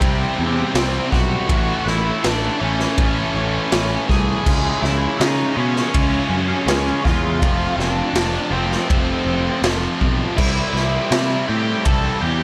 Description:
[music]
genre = quiet-loud alternative rock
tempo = 81 BPM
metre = 4/4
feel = straight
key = unclear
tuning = A4 = 440 Hz
[part]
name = octave-fuzz lead guitar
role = melody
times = 0.0-12.4 s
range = C4 to A5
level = -26 LUFS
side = equal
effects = distortion
[part]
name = cranked stack guitar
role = riff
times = 0.0-12.4 s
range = F2 to C#4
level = -30 LUFS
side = equal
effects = overdrive, phaser
[part]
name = tight distorted guitar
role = riff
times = 0.0-12.4 s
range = F2 to C#4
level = -29 LUFS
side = equal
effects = distortion
[part]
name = tight distorted guitar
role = riff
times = 0.0-12.4 s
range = A2 to F4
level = -30 LUFS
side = equal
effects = none
[part]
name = fuzz picked electric bass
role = bass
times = 0.0-12.4 s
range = F1 to C#3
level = -25 LUFS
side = equal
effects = overdrive
[part]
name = raw garage drum kit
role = drums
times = 0.0-12.0 s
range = crash cymbal, kick drum, ride cymbal, snare drum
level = -24 LUFS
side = equal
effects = none
[sound]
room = little or no reverb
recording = none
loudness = -19 LUFS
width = mono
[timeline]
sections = 0.0-12.4 A section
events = none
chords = 0.0 C; 1.5 A; 4.5 C#m; 7.4 F; 10.4 C

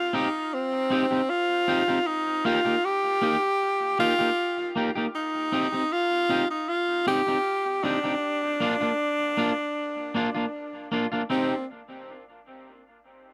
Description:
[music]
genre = reggae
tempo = 78 BPM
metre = 4/4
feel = straight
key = C minor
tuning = A4 = 440 Hz
[part]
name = clear tenor saxophone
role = melody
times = 0.0-11.7 s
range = C4 to G4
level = -27 LUFS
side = equal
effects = dub echo
[part]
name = electric guitar at the edge of break-up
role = accompaniment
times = 0.1-11.5 s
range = Bb3 to G4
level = -31 LUFS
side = equal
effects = dub echo
[sound]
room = moderate booth ambience, RT60 0.3 s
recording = none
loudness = -26 LUFS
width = mono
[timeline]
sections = 0.0-5.1 A section; 5.1-11.3 B section; 11.3-13.3 C section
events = none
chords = 0.0 Cm; 2.1 Eb; 5.1 Cm; 8.2 Bb; 11.3 Cm

